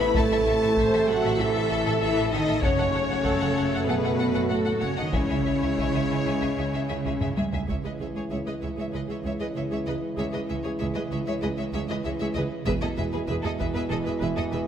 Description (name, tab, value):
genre	cinematic, epic orchestral film score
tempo	96 BPM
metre	4/4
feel	straight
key	C# minor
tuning	A4 = 440 Hz
part	rich chamber violin section	melody	0.0-14.6 s	A4 to B5	-34 LUFS	left 3 dB	none
part	rich symphonic violin section	second line	0.0-14.6 s	G#4 to F#5	-35 LUFS	left 4 dB	none
part	rich symphonic viola section	accompaniment	0.0-14.6 s	E4 to C#5	-33 LUFS	equal	none
part	clear trombone section	sustained chords	0.0-14.7 s	B2 to A3	-31 LUFS	right 4 dB	none
part	dark French horn section	sustained chords	0.0-14.7 s	G#3 to B4	-29 LUFS	left 3 dB	none
part	rich symphonic cello section	bass	0.0-14.6 s	C#2 to B3	-32 LUFS	right 3 dB	none
part	rich symphonic double bass section	bass	0.0-14.6 s	E1 to C#2	-32 LUFS	right 3 dB	none
part	taiko ensemble	drums	0.1-8.9, 12.7-13.9 s	none	-30 LUFS	equal	none
part	timpani	percussion	5.1-6.1 s	C#3	-36 LUFS	right 1 dB	none
room	wet scoring stage reverb, RT60 1.8 s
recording	none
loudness	-23 LUFS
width	side -9 dB against mid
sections	0.0-7.7 A section; 7.7-14.7 B section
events	drum fill 7.1-7.7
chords	0.0 Am; 2.6 F#m; 5.1 C#m; 12.7 E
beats	| 0.15 0.77 1.39 2.01 | 2.63 3.25 3.87 4.50 | 5.14 5.78 6.42 7.05 | 7.69 8.31 8.94 9.56 | 10.19 10.81 11.43 12.05 | 12.66 13.29 13.90 14.53